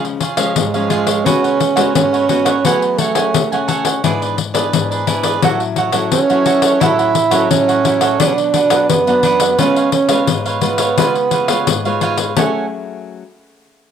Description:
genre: samba and choro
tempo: 86 BPM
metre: 4/4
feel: straight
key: F# minor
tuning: A4 = 440 Hz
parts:
  - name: cavaquinho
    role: accompaniment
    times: 0.0-12.7 s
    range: D4 to G#5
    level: -19 LUFS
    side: right 6 dB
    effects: cassette tape
  - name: nylon-string guitar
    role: accompaniment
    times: 0.0-13.2 s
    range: F#2 to G#4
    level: -22 LUFS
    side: left 7 dB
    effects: cassette tape
  - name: pandeiro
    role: percussion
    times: 0.0-12.5 s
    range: none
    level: -18 LUFS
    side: left 10 dB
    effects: none
  - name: breathy tenor saxophone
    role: second line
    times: 0.6-12.7 s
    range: G#3 to E4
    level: -15 LUFS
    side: right 5 dB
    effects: cassette tape
room: light reverb, small room reverb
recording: home recording on cassette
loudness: -12 LUFS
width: side -8 dB against mid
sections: 0.0-12.4 A section; 12.4-13.9 B section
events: tenor saxophone solo 0.0-12.4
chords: 0.0 C#; 1.3 C#7sus4; 2.6 F#madd9; 4.0 E7/G#; 5.4 A6; 8.2 Bm; 9.6 C#7; 12.4 F#madd9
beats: 0.56 | 1.26 1.95 2.65 3.34 | 4.04 4.73 5.42 6.12 | 6.81 7.50 8.20 8.89 | 9.59 10.28 10.98 11.67 | 12.37 13.06

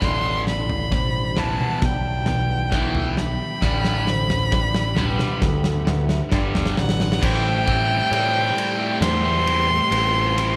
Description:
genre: post-rock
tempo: 67 BPM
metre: 4/4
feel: straight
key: A minor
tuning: A4 = 440 Hz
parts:
  - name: dark violin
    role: melody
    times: 0.0-10.6 s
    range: F#5 to C6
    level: -26 LUFS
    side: equal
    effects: digital delay
  - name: twelve-string electric guitar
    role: arpeggios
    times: 0.0-10.6 s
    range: A2 to G4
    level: -36 LUFS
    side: equal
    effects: none
  - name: vibraphone with soft mallets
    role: arpeggios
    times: 0.0-10.6 s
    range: A4 to E5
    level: -36 LUFS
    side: equal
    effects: digital delay
  - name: biting overdriven guitar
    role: riff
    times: 0.0-10.6 s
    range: E2 to E4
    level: -30 LUFS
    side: equal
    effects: phaser
  - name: distorted electric guitar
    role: riff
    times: 0.0-10.6 s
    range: E2 to E4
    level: -32 LUFS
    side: equal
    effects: distortion
  - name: growling picked electric bass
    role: bass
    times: 0.0-10.6 s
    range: G1 to A2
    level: -27 LUFS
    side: equal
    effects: overdrive
  - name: big rock drum kit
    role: drums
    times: 0.0-10.6 s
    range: crash cymbal, kick drum, ride cymbal, snare drum, toms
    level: -27 LUFS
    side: equal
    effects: none
room: light reverb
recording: none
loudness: -21 LUFS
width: mono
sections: 0.0-7.2 A section; 7.2-10.6 B section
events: build-up 0.0-7.2; drum fill 0.0-7.2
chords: 0.0 Em7/A; 3.6 G/A; 7.2 Am7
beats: | 0.02 0.92 1.82 2.73 | 3.63 4.53 5.43 6.33 | 7.22 8.12 9.02 9.92

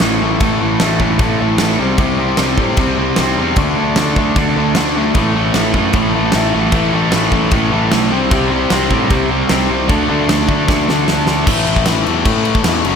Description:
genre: punk rock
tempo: 152 BPM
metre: 4/4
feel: straight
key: unclear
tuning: A4 = 440 Hz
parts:
  - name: cranked stack guitar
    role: riff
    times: 0.0-13.0 s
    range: F#2 to D4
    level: -18 LUFS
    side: left 12 dB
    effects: overdrive
  - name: overdriven electric guitar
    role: riff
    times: 0.0-11.5 s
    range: A2 to D4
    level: -18 LUFS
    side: right 13 dB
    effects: none
  - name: fuzz picked electric bass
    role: bass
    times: 0.0-13.0 s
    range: F#1 to A2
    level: -20 LUFS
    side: equal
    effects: overdrive
  - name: big rock drum kit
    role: drums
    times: 0.0-12.9 s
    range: crash cymbal, kick drum, snare drum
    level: -17 LUFS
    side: equal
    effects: none
  - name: distorted electric guitar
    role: riff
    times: 5.1-13.0 s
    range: F#2 to D4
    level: -20 LUFS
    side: right 1 dB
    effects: overdrive
room: little or no reverb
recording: none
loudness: -12 LUFS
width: side -6 dB against mid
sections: 0.0-11.5 A section; 11.5-13.0 B section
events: drum fill 10.7-11.5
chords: 0.0 A5; 1.8 C5; 3.6 D5; 5.2 A5; 8.1 C5; 9.9 D5; 11.5 A5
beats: 0.02 | 0.41 0.81 1.20 1.60 | 1.99 2.39 2.78 3.18 | 3.57 3.97 4.37 4.76 | 5.16 5.55 5.94 6.34 | 6.73 7.13 7.52 7.92 | 8.31 8.71 9.10 9.50 | 9.89 10.29 10.68 11.08 | 11.47 11.87 12.26 12.66

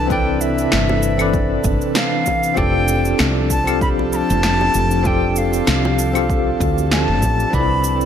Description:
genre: sunset chillout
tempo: 97 BPM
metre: 4/4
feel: swing 55% on 16ths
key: unclear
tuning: A4 = 440 Hz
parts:
  - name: bright wooden flute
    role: melody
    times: 0.0-8.1 s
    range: E5 to B5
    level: -22 LUFS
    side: left 1 dB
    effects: digital delay
  - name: bell-like tine electric piano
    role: accompaniment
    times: 0.0-8.1 s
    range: E3 to F5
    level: -21 LUFS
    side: moving between left 4 dB and right 3 dB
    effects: medium stereo tremolo, auto-pan, digital delay
  - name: airy breathy pad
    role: sustained chords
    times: 0.0-8.1 s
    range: C3 to D5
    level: -24 LUFS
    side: equal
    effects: chorus
  - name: woody fretless electric bass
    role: bass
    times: 0.0-8.1 s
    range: F1 to D2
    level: -20 LUFS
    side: equal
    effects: wide subtle chorus
  - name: electronic kick drum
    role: drums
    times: 0.1-7.7 s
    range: none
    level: -22 LUFS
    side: equal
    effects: none
  - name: electronic shaker, snare drum and claves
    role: drums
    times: 0.1-8.1 s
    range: none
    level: -22 LUFS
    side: equal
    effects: gated reverb
  - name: bongos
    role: percussion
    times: 0.9-7.4 s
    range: none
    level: -30 LUFS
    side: right 1 dB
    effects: none
room: light reverb, digital ambience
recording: bright 1980s-style digital production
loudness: -15 LUFS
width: side -9 dB against mid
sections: 0.0-8.1 A section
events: none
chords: 0.0 Cmaj13; 2.6 F69; 7.5 Cmaj13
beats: | 0.11 0.73 1.34 1.96 | 2.58 3.20 3.82 4.44 | 5.06 5.67 6.29 6.91 | 7.53

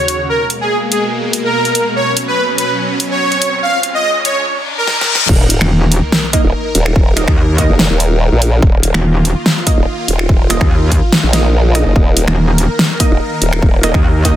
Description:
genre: heavy wobble dubstep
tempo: 144 BPM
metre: 4/4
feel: half-time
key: Eb minor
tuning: A4 = 440 Hz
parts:
  - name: soft supersaw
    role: melody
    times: 0.0-5.2 s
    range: Ab4 to F5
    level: -15 LUFS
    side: equal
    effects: digital delay
  - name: supersaw pad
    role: sustained chords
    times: 0.0-14.4 s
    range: Eb2 to Bb4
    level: -21 LUFS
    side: equal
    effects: phaser, sidechain pumping
  - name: riser, reverse cymbal and sub drop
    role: sound effects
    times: 2.4-7.0 s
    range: none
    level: -22 LUFS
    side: left 2 dB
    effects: none
  - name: big-room dance drum kit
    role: drums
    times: 0.1-14.3 s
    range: crash cymbal, finger snaps, hi-hat, snare drum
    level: -15 LUFS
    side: equal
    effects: studio reverb, soft clipping on snare
  - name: formant-sweep wobble bass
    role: bass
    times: 5.3-13.9 s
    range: Eb1 to Bb1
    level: -13 LUFS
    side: equal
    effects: chorus, overdrive
  - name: electronic kick drum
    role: drums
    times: 5.3-14.3 s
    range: none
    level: -12 LUFS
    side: equal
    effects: studio reverb
  - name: metallic wobble bass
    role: bass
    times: 5.6-14.3 s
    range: Eb1 to Eb2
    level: -12 LUFS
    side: equal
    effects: chorus, overdrive
  - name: orchestra-hit-like synth stab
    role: stabs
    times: 6.3-14.3 s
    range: Bb3 to Eb5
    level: -20 LUFS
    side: right 3 dB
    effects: built-in reverb, digital delay
room: light reverb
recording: dense, heavily limited modern master, high-pass filter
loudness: -10 LUFS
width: side -12 dB against mid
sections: 0.0-5.3 A section; 5.3-14.4 B section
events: build-up 0.0-5.3; filter sweep 0.0-5.3; riser 2.4-5.3; reverse cymbal 4.5-5.3; drum fill 4.9-5.3; drop 5.3-14.4; impact 5.3-7.0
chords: 0.3 Abmadd9; 2.0 Bsus2; 3.6 Db; 5.3 Eb5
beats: | 0.29 0.71 1.12 1.54 | 1.96 2.38 2.79 3.21 | 3.62 4.04 4.46 4.88 | 5.29 5.71 6.12 6.54 | 6.96 7.38 7.79 8.21 | 8.62 9.04 9.46 9.88 | 10.29 10.71 11.12 11.54 | 11.96 12.38 12.79 13.21 | 13.62 14.04

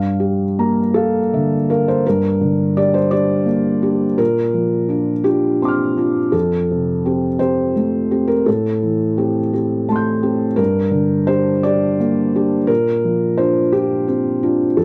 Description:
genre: neoclassical minimalist piano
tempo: 56 BPM (dotted quarters)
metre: 6/8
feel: rubato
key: G dorian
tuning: A4 = 440 Hz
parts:
  - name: felt-muted upright piano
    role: solo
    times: 0.0-14.8 s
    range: F2 to G6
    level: -17 LUFS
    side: equal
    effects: none
room: moderate studio reverb, RT60 0.7 s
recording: dry, close 1970s-style studio recording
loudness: -17 LUFS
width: mono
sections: 0.0-2.0 A section; 2.0-14.8 B section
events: none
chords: 0.0 Gm7; 2.0 Gm; 4.2 Bbadd9; 6.3 Fadd9; 8.5 Am7; 10.6 Gm; 12.7 Bbadd9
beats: 0.94 | 2.04 3.12 | 4.20 5.27 | 6.34 7.40 | 8.47 9.54 | 10.59 11.65 | 12.69 13.74 | 14.79

